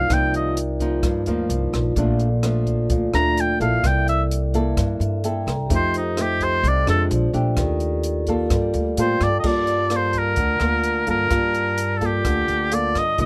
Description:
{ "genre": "bossa nova", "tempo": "128 BPM", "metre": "4/4", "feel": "straight", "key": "G minor", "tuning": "A4 = 442 Hz", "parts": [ { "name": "clear oboe", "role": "melody", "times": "0.0-13.3 s", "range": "Eb4 to Bb5", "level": "-24 LUFS", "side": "equal", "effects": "none" }, { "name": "nylon-string guitar", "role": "accompaniment", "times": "0.0-13.3 s", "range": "G2 to A4", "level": "-27 LUFS", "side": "equal", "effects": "none" }, { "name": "vibraphone with soft mallets", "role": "accompaniment", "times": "0.0-13.3 s", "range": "Bb3 to D6", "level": "-30 LUFS", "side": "equal", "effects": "none" }, { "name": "upright bass", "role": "bass", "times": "0.0-13.3 s", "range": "Bb1 to A2", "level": "-26 LUFS", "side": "equal", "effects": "none" }, { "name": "compact cocktail drum kit", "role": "drums", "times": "0.1-13.3 s", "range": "crash cymbal, hi-hat, kick drum, rim click", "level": "-29 LUFS", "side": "equal", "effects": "none" } ], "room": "little or no reverb", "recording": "close, detailed microphones", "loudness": "-21 LUFS", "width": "mono", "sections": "0.0-9.4 A section; 9.4-13.3 B section", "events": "oboe solo 0.0-9.4; vibraphone fill 4.8-5.7, 8.5-9.4", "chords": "0.0 Cm11; 2.0 Bbmaj7; 3.8 C13; 5.7 F9; 7.1 Bb7; 7.6 Ebmaj9#11; 8.5 Gm9" }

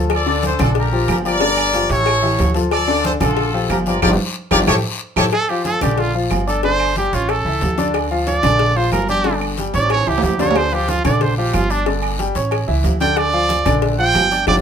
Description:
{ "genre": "latin, salsa", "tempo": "184 BPM", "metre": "4/4", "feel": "straight", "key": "D minor", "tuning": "A4 = 440 Hz", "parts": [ { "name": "clear baby grand piano", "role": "accompaniment", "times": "0.0-14.6 s", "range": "D3 to D6", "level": "-21 LUFS", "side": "left 3 dB", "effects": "none" }, { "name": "upright bass", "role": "bass", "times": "0.0-14.6 s", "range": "G1 to D2", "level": "-21 LUFS", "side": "right 1 dB", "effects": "none" }, { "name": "bright trumpet section", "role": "melody", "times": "0.1-5.2 s", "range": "F4 to D5", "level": "-19 LUFS", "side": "left 1 dB", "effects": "none" }, { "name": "agogo bells and timbales", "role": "percussion", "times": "0.1-14.6 s", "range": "none", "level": "-26 LUFS", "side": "right 8 dB", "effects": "none" }, { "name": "claves", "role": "percussion", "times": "0.1-14.6 s", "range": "none", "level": "-30 LUFS", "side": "right 6 dB", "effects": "none" }, { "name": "congas", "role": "percussion", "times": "0.1-14.6 s", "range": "none", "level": "-25 LUFS", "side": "equal", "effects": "none" }, { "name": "cowbell", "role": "percussion", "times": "0.1-14.5 s", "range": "none", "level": "-26 LUFS", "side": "left 11 dB", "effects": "none" }, { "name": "guiro", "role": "percussion", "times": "0.1-14.6 s", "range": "none", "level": "-32 LUFS", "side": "left 6 dB", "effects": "none" }, { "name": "clear trumpet", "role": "melody", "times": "5.3-14.6 s", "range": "D4 to G5", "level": "-19 LUFS", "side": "right 3 dB", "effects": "none" } ], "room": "moderate studio reverb, RT60 0.6 s", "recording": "minimal, uncompressed stereo recording", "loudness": "-15 LUFS", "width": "side -7 dB against mid", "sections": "0.0-5.3 A section; 5.3-14.6 B section", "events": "drum fill 4.0-5.3, 9.7-10.6; band accent 4.0-5.3; trumpet solo 5.3-14.6", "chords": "0.1 Dm; 0.8 Bb6; 1.4 Gm7; 2.1 A7; 2.7 Dm; 3.4 Gm7; 4.7 A7(no3); 5.3 Dm; 6.0 Bb6; 6.6 G5; 7.3 A; 7.9 Dm; 8.6 Bb6; 9.3 G5; 9.9 A; 10.6 Dm; 11.2 Bb6; 11.9 G5; 12.5 A; 13.2 Dm; 13.8 Bb6" }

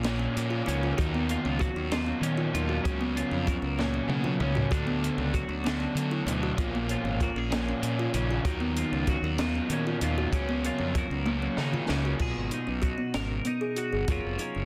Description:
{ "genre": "math rock and midwest emo", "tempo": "64 BPM (dotted quarters)", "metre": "6/8", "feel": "straight", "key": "F# major", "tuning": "A4 = 440 Hz", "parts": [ { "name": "twelve-string electric guitar", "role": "accompaniment", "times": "0.0-14.7 s", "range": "A#2 to A#4", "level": "-36 LUFS", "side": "equal", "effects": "subtle chorus" }, { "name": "kalimba", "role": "arpeggios", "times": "0.0-14.7 s", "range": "A#3 to G#4", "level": "-35 LUFS", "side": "equal", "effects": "none" }, { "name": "fuzz fingered electric bass", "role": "bass", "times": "0.0-14.7 s", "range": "E#1 to D#3", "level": "-34 LUFS", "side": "equal", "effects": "overdrive" }, { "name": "compact cocktail drum kit", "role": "drums", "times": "0.0-14.5 s", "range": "crash cymbal, hi-hat, kick drum, snare drum, toms", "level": "-34 LUFS", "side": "equal", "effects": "none" }, { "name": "crunchy overdriven guitar", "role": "riff", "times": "0.1-12.2 s", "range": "A#2 to D#4", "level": "-37 LUFS", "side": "equal", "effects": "none" } ], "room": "light reverb", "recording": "dense, heavily limited modern master", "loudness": "-29 LUFS", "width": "mono", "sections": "0.0-12.2 A section; 12.2-14.7 B section", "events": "drum fill 3.8-4.7, 11.3-12.2", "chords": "0.0 A#m7; 1.0 F#maj7/C#; 4.7 Dmaj7; 6.6 A#m7; 8.5 F#maj7/C#; 12.2 B69; 14.1 F#maj7" }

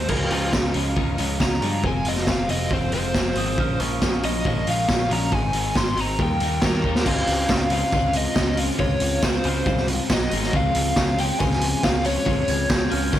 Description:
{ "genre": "indie rock", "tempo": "138 BPM", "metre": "4/4", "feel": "straight", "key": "unclear", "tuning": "A4 = 440 Hz", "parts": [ { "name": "crunchy overdriven guitar", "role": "melody", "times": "0.0-12.7 s", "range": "F4 to C6", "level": "-26 LUFS", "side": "equal", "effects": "tremolo, digital delay" }, { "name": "overdriven electric guitar", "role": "riff", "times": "0.0-13.2 s", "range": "Ab2 to F#4", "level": "-30 LUFS", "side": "right 6 dB", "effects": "analog chorus" }, { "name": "twelve-string electric guitar", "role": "riff", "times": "0.0-13.2 s", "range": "F2 to F#4", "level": "-28 LUFS", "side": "left 9 dB", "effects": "none" }, { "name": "modern bright picked electric bass", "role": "bass", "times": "0.0-13.2 s", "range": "F1 to G2", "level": "-26 LUFS", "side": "equal", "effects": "transformer saturation" }, { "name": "raw garage drum kit", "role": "drums", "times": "0.1-13.2 s", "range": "crash cymbal, hi-hat, kick drum, snare drum", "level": "-23 LUFS", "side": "equal", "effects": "none" }, { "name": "tambourine", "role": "percussion", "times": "0.5-13.2 s", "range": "none", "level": "-40 LUFS", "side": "right 11 dB", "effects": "none" }, { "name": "glockenspiel with soft plastic mallets", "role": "second line", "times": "3.4-4.1, 12.5-13.2 s", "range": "Db6 to Ab6", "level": "-33 LUFS", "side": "right 2 dB", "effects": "none" } ], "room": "light reverb", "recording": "blown-out, overdriven recording, overdrive", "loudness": "-19 LUFS", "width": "side -12 dB against mid", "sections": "0.0-7.1 A section; 7.1-13.2 B section", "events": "overdriven electric guitar solo 0.0-7.1; drum fill 6.8", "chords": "0.1 Dbadd9; 1.8 Fm; 3.6 Bbm7; 5.3 Ab; 6.2 Eb; 7.1 Dbmaj7; 10.1 B5; 10.3 Ab5; 10.5 Dbmaj7" }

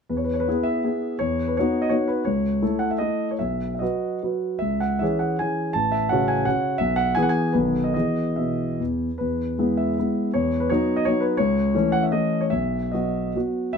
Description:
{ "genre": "classical, romantic triple-time dance for piano with dotted rhythms", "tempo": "135-186 BPM", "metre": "3/4", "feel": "rubato", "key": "E major", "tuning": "A4 = 440 Hz", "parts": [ { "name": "warm concert grand piano", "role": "solo", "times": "0.1-13.8 s", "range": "A1 to A5", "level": "-21 LUFS", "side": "equal", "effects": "none" } ], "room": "light reverb", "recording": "minimal, uncompressed stereo recording", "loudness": "-21 LUFS", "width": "side -6 dB against mid", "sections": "0.1-9.2 A section; 9.2-13.8 A section", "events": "none", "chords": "0.1 E; 1.2 B/E; 2.3 A/C#; 3.4 B; 4.6 C#m; 5.7 F#m/A; 6.8 E/B; 7.5 B7; 7.9 E; 10.3 B/E; 11.4 A/C#; 12.5 B" }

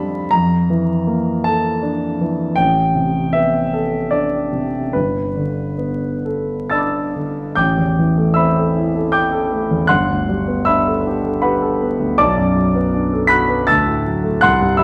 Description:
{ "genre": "classical, impressionist solo piano", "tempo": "63-82 BPM", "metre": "3/4", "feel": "rubato", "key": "A dorian", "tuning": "A4 = 440 Hz", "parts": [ { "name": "warm grand piano", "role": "solo", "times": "0.0-14.8 s", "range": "G1 to B6", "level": "-17 LUFS", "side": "equal", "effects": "none" } ], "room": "moderate recital hall reverb, RT60 1.7 s", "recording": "vinyl crackle", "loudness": "-17 LUFS", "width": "mono", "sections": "0.0-7.6 A section; 7.6-14.8 B section", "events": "none", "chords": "0.3 Bbmaj7#11/F; 2.6 Am11; 4.9 Gadd9; 7.6 Am7; 9.9 G69; 12.2 Bm7; 13.7 Dadd9" }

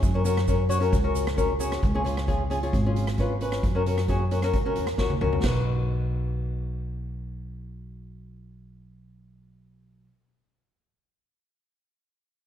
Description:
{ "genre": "calypso", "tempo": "133 BPM", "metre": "4/4", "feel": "straight", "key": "B major", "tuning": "A4 = 439 Hz", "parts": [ { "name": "upright bass", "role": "bass", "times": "0.0-10.1 s", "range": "G#1 to F#2", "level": "-27 LUFS", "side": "equal", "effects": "none" }, { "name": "street-band drum kit", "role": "drums", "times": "0.0-5.5 s", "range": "crash cymbal, hi-hat, kick drum, rim click, snare drum, toms", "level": "-28 LUFS", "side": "equal", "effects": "none" }, { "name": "tube shaker", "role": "percussion", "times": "0.0-1.8 s", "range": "none", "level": "-43 LUFS", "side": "right 9 dB", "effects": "none" }, { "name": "flamenco guitar", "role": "accompaniment", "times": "0.1-10.1 s", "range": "C#4 to C#5", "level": "-28 LUFS", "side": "left 2 dB", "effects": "none" } ], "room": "light reverb", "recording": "dark, warm production", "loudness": "-23 LUFS", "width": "side -10 dB against mid", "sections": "0.0-5.4 A section; 5.4-9.0 B section", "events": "drum fill 5.0-5.4", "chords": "0.0 F#; 1.8 C#7; 3.6 F#; 5.4 B" }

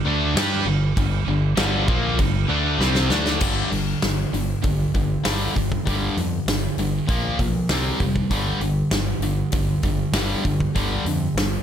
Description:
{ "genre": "hard rock", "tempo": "98 BPM", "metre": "4/4", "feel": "straight", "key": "G minor", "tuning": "A4 = 440 Hz", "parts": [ { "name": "distorted electric guitar", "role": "riff", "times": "0.0-11.6 s", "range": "G2 to G4", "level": "-26 LUFS", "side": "left 8 dB", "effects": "overdrive" }, { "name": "growling fingered electric bass", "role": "bass", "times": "0.0-11.6 s", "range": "F1 to G2", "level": "-26 LUFS", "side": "equal", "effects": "overdrive" }, { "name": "high-gain distorted guitar", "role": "riff", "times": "0.1-11.6 s", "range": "G2 to G4", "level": "-26 LUFS", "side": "right 9 dB", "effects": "distortion" }, { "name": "scooped high-gain guitar", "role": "riff", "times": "0.1-3.4 s", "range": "G2 to G4", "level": "-28 LUFS", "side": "equal", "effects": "distortion" }, { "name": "big rock drum kit", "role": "drums", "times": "0.4-11.5 s", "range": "crash cymbal, hi-hat, kick drum, snare drum", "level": "-25 LUFS", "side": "equal", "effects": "none" } ], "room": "light reverb", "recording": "none", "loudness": "-19 LUFS", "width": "side -9 dB against mid", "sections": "0.0-3.4 A section; 3.4-11.6 B section", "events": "drum fill 2.8-3.4", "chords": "0.0 Gm; 3.4 G5; 7.1 Bb5; 7.7 C5; 8.3 G5" }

